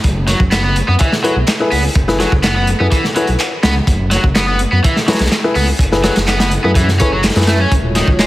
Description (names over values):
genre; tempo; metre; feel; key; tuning
breakbeat, breaks; 125 BPM; 4/4; straight; unclear; A4 = 440 Hz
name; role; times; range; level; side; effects
dark detuned saw bass; bass; 0.0-8.3 s; Eb1 to Gb2; -16 LUFS; equal; none
crunchy breakbeat drum kit; drums; 0.0-8.3 s; hi-hat, kick drum, snare drum; -15 LUFS; equal; none
overdriven semi-hollow guitar; riff; 0.3-8.3 s; Eb3 to Db4; -18 LUFS; equal; digital delay
electronic handclaps; drums; 0.5-8.3 s; none; -24 LUFS; equal; none
dark concert grand piano; stabs; 1.2-7.6 s; Fb4 to Cb5; -19 LUFS; left 2 dB; digital delay
dark analog pad; sustained chords; 7.7-8.3 s; Ab3 to Db5; -20 LUFS; equal; chorus, sidechain pumping
room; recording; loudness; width
light reverb; heavily compressed radio sound, multiband compression; -11 LUFS; side -16 dB against mid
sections
0.0-8.3 A section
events
none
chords
0.0 Gbm11; 7.7 Ebm11